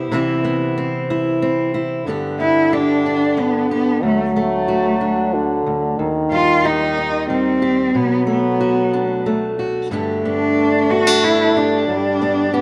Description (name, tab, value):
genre	acoustic folk-pop ballad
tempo	92 BPM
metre	3/4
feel	straight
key	G major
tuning	A4 = 440 Hz
part	fingerpicked steel-string acoustic guitar	accompaniment	0.0-12.6 s	D2 to G4	-23 LUFS	equal	none
part	clear French horn	second line	2.0-12.6 s	D3 to B3	-23 LUFS	equal	none
part	warm cello	melody	2.4-12.6 s	A3 to F#4	-20 LUFS	equal	none
room	moderate plate reverb, RT60 2.8 s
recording	none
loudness	-18 LUFS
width	mono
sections	0.1-2.1 A section; 2.1-12.6 B section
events	none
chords	0.1 Cmaj7; 2.1 G; 4.0 D; 6.0 Eb; 7.9 Bm7; 9.9 G